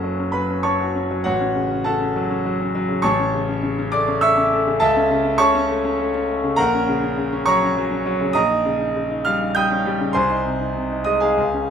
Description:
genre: classical, virtuoso piano study.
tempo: 101 BPM.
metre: 3/4.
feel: rubato.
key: unclear.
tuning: A4 = 440 Hz.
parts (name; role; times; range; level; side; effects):
bright concert grand piano; solo; 0.0-11.7 s; F#1 to G6; -17 LUFS; equal; none.
room: moderate large studio reverb, RT60 1.2 s.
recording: none.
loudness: -17 LUFS.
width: side -7 dB against mid.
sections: 0.0-11.7 A section.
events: none.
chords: 0.0 F#m; 1.2 F#m/A; 3.0 A; 4.8 A/C#; 6.6 Gb/Bb; 8.3 Eb7/Bb; 10.2 Ab/C.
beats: 0.04 0.64 | 1.25 1.85 2.46 | 3.04 3.64 4.22 | 4.81 5.40 5.99 | 6.58 7.17 7.76 | 8.35 8.95 9.56 | 10.15 10.75 11.37.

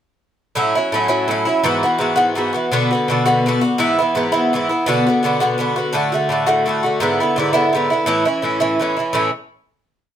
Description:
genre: celtic folk, Celtic jig.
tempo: 112 BPM (dotted quarters).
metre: 6/8.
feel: straight.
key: A major.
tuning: A4 = 438 Hz.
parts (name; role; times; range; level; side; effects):
Irish bouzouki; solo; 0.6-9.3 s; G#2 to F#4; -15 LUFS; equal; none.
room: moderate studio reverb, RT60 0.6 s.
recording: none.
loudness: -15 LUFS.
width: side -10 dB against mid.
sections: 0.6-9.1 A section; 9.1-10.2 final chord.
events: none.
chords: 0.6 A6; 1.6 Eadd9; 2.7 Bm; 3.8 E; 4.9 Bm; 5.9 D; 7.0 E7; 8.1 A.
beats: | 0.57 1.10 | 1.64 2.18 | 2.71 3.25 | 3.78 4.32 | 4.86 5.39 | 5.93 6.46 | 7.00 7.53 | 8.07 8.60 | 9.14.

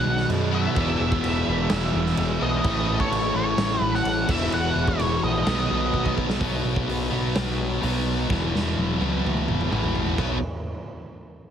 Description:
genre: quiet-loud alternative rock.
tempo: 127 BPM.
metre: 4/4.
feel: straight.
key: B mixolydian.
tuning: A4 = 440 Hz.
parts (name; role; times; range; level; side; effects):
octave-fuzz lead guitar; melody; 0.0-6.1 s; C#5 to F#5; -27 LUFS; equal; distortion.
cranked stack guitar; riff; 0.0-10.4 s; E2 to B3; -28 LUFS; left 11 dB; overdrive.
distorted electric guitar; riff; 0.0-6.4 s; E2 to B3; -31 LUFS; right 1 dB; overdrive.
sludgy distorted guitar; riff; 0.0-10.4 s; A2 to E4; -29 LUFS; right 12 dB; overdrive.
growling picked electric bass; bass; 0.1-10.4 s; E1 to F#2; -28 LUFS; equal; overdrive.
raw garage drum kit; drums; 0.2-10.3 s; china cymbal, crash cymbal, hi-hat, kick drum, snare drum, toms; -28 LUFS; right 1 dB; none.
room: little or no reverb.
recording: heavily compressed radio sound.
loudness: -21 LUFS.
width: side -9 dB against mid.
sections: 0.0-6.4 A section; 6.4-10.2 B section; 10.2-11.5 C section.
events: drum fill 5.9-6.4, 8.3-10.2.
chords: 0.0 B; 0.8 E; 2.6 A; 4.3 E; 5.5 B; 8.3 E; 10.2 B.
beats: 0.30 | 0.77 1.24 1.71 2.17 | 2.64 3.11 3.58 4.05 | 4.53 5.00 5.47 5.94 | 6.41 6.88 7.35 7.82 | 8.30 8.77 9.24 9.71 | 10.18.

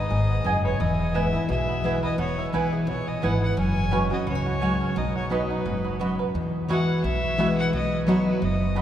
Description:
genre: bluegrass.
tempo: 173 BPM.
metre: 4/4.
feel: swing 54% on 8ths.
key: unclear.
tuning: A4 = 440 Hz.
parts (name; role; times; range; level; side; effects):
bluegrass banjo; melody; 0.0-8.8 s; B3 to B4; -33 LUFS; right 4 dB; none.
clear fiddle; melody; 0.0-8.8 s; B4 to G#5; -31 LUFS; left 2 dB; none.
picked steel-string acoustic guitar; accompaniment; 0.0-8.8 s; E2 to G#4; -25 LUFS; equal; none.
upright bass; bass; 0.0-8.8 s; E1 to E2; -28 LUFS; equal; none.
mandolin; stabs; 0.4-8.8 s; B3 to B5; -32 LUFS; right 2 dB; none.
room: wet cathedral reverb, RT60 5.3 s.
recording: recorded in a church or concert hall.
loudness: -22 LUFS.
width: side -10 dB against mid.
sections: 0.0-6.3 A section; 6.3-8.8 B section.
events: none.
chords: 0.0 G#m; 0.8 E; 3.6 F#sus2; 5.0 B; 6.3 Eadd9; 7.7 B.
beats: 0.11 0.46 | 0.81 1.15 1.50 1.84 | 2.19 2.54 2.88 3.23 | 3.58 3.92 4.27 4.62 | 4.96 5.31 5.66 6.00 | 6.35 6.69 7.04 7.38 | 7.73 8.07 8.42 8.77.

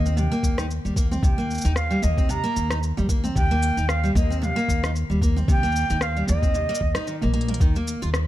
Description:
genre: folktronica.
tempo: 113 BPM.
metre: 4/4.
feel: swing 56% on 16ths.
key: unclear.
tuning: A4 = 440 Hz.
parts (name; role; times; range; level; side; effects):
concert flute; melody; 0.0-7.3 s; Eb5 to Bb5; -28 LUFS; right 2 dB; ping-pong delay.
picked steel-string acoustic guitar; arpeggios; 0.0-8.1 s; C3 to F4; -28 LUFS; equal; ping-pong delay.
upright bass; bass; 0.0-8.3 s; Bb1 to Eb2; -24 LUFS; equal; none.
organic electronic drum kit; drums; 0.1-8.3 s; cabasa, hi-hat, rim click, toms; -30 LUFS; equal; studio reverb.
electronic kick drum; drums; 0.4-7.7 s; none; -22 LUFS; equal; overdrive, studio reverb.
room: studio reverb.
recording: dark, warm production.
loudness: -20 LUFS.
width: side -14 dB against mid.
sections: 0.0-7.6 A section.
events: kick drops out 7.1-7.6; drum fill 7.3.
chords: 0.0 Cm7/Eb; 7.6 Eb5.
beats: 0.17 0.70 | 1.23 1.76 2.29 2.83 | 3.36 3.89 4.42 4.95 | 5.48 6.01 6.54 7.07 | 7.61 8.14.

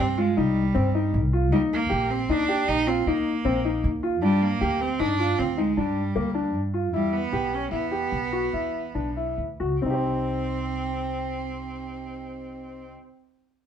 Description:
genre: contemporary instrumental, chamber music in an uneven meter.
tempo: 133-156 BPM.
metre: 7/4.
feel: straight.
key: C minor.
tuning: A4 = 439 Hz.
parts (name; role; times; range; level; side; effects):
bright cello; melody; 0.0-12.9 s; G3 to Eb4; -27 LUFS; right 3 dB; none.
clear concert grand piano; arpeggios; 0.0-13.1 s; Bb3 to C5; -27 LUFS; left 2 dB; none.
upright bass; bass; 0.0-12.9 s; Bb1 to G2; -29 LUFS; equal; none.
room: moderate studio reverb, RT60 0.9 s.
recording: heard from further back in the room.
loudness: -22 LUFS.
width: side -8 dB against mid.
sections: 0.0-9.8 A section; 9.8-13.0 B section.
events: slowing down 6.5-9.8.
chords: 0.0 Cm; 1.5 Eb; 4.2 G5; 6.9 Em; 9.8 Cm.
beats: 0.37 0.76 1.14 | 1.52 1.91 2.29 2.68 3.06 3.45 3.83 | 4.22 4.61 4.99 5.38 5.76 6.15 6.54 | 6.92 7.32 7.71 8.11 8.52 8.94 9.38 | 9.82 10.27 10.72 11.18 11.63 12.08 12.53.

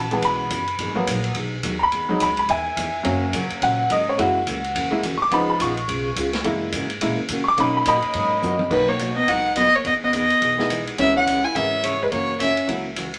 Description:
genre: country, western swing.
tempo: 212 BPM.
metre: 4/4.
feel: swing 59% on 8ths.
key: B major.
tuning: A4 = 438 Hz.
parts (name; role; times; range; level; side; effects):
picked steel-string acoustic guitar; accompaniment; 0.0-13.1 s; B2 to G#4; -33 LUFS; equal; none.
tack piano; accompaniment; 0.0-12.8 s; E3 to D6; -24 LUFS; equal; none.
upright bass; bass; 0.0-13.1 s; F#1 to C#3; -35 LUFS; equal; none.
vintage drum kit; drums; 0.1-13.2 s; crash cymbal, hi-hat, kick drum, ride cymbal, snare drum, toms; -31 LUFS; equal; none.
dark fiddle; melody; 8.7-12.7 s; B4 to G#5; -22 LUFS; equal; none.
vintage hollow-body jazz guitar; second line; 8.7-12.7 s; F#3 to E4; -28 LUFS; equal; none.
room: wet studio reverb, RT60 0.6 s.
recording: none.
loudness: -21 LUFS.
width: mono.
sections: 0.0-8.7 A section; 8.7-13.2 B section.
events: honky-tonk piano solo 0.0-8.7; drum fill 8.4.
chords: 0.0 F#7sus4; 0.8 G#m7; 1.9 Emaj7; 3.1 F#; 4.2 F#7; 5.3 C#7; 6.5 F#7; 7.6 Bmaj7; 9.8 Emaj7; 11.0 C#m7; 12.1 F#7.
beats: 0.23 0.51 | 0.80 1.08 1.36 1.64 | 1.93 2.21 2.49 2.77 | 3.06 3.34 3.62 3.90 | 4.19 4.47 4.75 5.04 | 5.32 5.60 5.88 6.17 | 6.45 6.73 7.02 7.30 | 7.58 7.86 8.15 8.43 | 8.71 9.00 9.28 9.56 | 9.85 10.13 10.42 10.70 | 10.98 11.27 11.55 11.84 | 12.12 12.40 12.69 12.97.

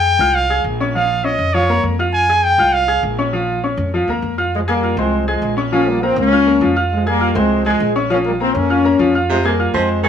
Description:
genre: latin.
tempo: 201 BPM.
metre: 4/4.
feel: straight.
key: F minor.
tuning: A4 = 444 Hz.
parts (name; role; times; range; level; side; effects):
bright trumpet; melody; 0.0-3.0 s; Db5 to Ab5; -15 LUFS; equal; none.
clear grand piano; accompaniment; 0.0-10.1 s; F3 to Ab6; -19 LUFS; left 1 dB; none.
upright bass; bass; 0.0-10.1 s; Bb1 to F2; -22 LUFS; equal; none.
warm trombone section; melody; 4.5-10.1 s; F3 to Db4; -16 LUFS; left 2 dB; none.
warm baritone saxophone; second line; 9.3-10.1 s; C3 to F3; -19 LUFS; right 4 dB; none.
room: moderate studio reverb, RT60 0.7 s.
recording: none.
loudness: -14 LUFS.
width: side -8 dB against mid.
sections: 0.0-4.5 A section; 4.5-10.1 B section.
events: trumpet solo 0.0-4.5.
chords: 0.0 Fm; 0.9 Bbm; 2.1 Fm; 3.3 Bbm; 4.5 Fm; 5.7 Bbm; 6.9 Fm; 8.1 Bbm; 9.3 Fm.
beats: 0.05 0.34 0.64 | 0.94 1.24 1.54 1.84 | 2.14 2.44 2.73 3.03 | 3.33 3.63 3.93 4.23 | 4.53 4.82 5.12 5.42 | 5.72 6.02 6.31 6.61 | 6.91 7.21 7.51 7.80 | 8.10 8.40 8.70 8.99 | 9.29 9.59 9.89.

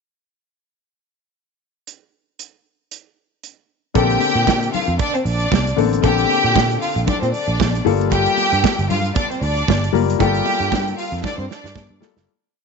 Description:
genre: disco.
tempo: 115 BPM.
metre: 4/4.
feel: swing 56% on 16ths.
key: Bb major.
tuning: A4 = 440 Hz.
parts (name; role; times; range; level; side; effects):
modern studio drum kit; drums; 1.9-12.3 s; hi-hat, kick drum, snare drum; -23 LUFS; right 7 dB; none.
warm grand piano; accompaniment; 3.9-12.3 s; D3 to Bb4; -22 LUFS; left 14 dB; none.
clear studio string section; second line; 4.0-12.0 s; C4 to G5; -20 LUFS; equal; none.
picked electric bass; bass; 4.0-12.3 s; Gb1 to Bb2; -21 LUFS; right 2 dB; none.
congas; percussion; 4.0-12.2 s; none; -27 LUFS; left 12 dB; none.
room: light reverb, small room ambience.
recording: 1960s-style stereo with parts hard left and right, nothing above 7.8 kHz.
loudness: -16 LUFS.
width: side -4 dB against mid.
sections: 1.9-4.0 pickup bar; 4.0-12.3 verse.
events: fade-out 10.2-12.3; drum fill 11.2-12.3.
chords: 1.9 N.C.; 4.0 Bbmaj9; 7.9 Gm9.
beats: | 1.88 2.40 2.92 3.44 | 3.96 4.47 5.00 5.51 | 6.04 6.56 7.08 7.60 | 8.12 8.64 9.16 9.68 | 10.20 10.71 11.23 11.75.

